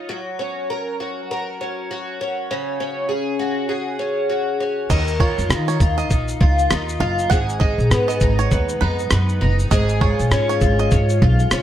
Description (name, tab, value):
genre	acoustic pop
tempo	100 BPM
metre	4/4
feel	swing 60% on 16ths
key	unclear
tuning	A4 = 440 Hz
part	picked twelve-string acoustic guitar	accompaniment	0.0-11.6 s	G#2 to C#5	-22 LUFS	left 1 dB	lush chorus
part	bluegrass banjo	arpeggios	4.9-11.2 s	B4 to F#5	-26 LUFS	right 7 dB	none
part	upright bass	bass	4.9-11.6 s	F#1 to D#3	-19 LUFS	equal	none
part	dusty soul sampler-style drum kit	drums	4.9-11.6 s	crash cymbal, kick drum, rim click, shaker	-20 LUFS	equal	none
room	light reverb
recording	none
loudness	-17 LUFS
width	side -11 dB against mid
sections	0.0-4.9 A section; 4.9-11.6 B section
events	none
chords	0.1 F#; 2.5 C#sus4; 4.9 D#sus2; 7.3 G#m7; 9.7 C#add9/G#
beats	| 0.09 0.69 1.30 1.90 | 2.50 3.10 3.70 4.30 | 4.91 5.51 6.11 6.71 | 7.31 7.91 8.51 9.11 | 9.71 10.31 10.91 11.51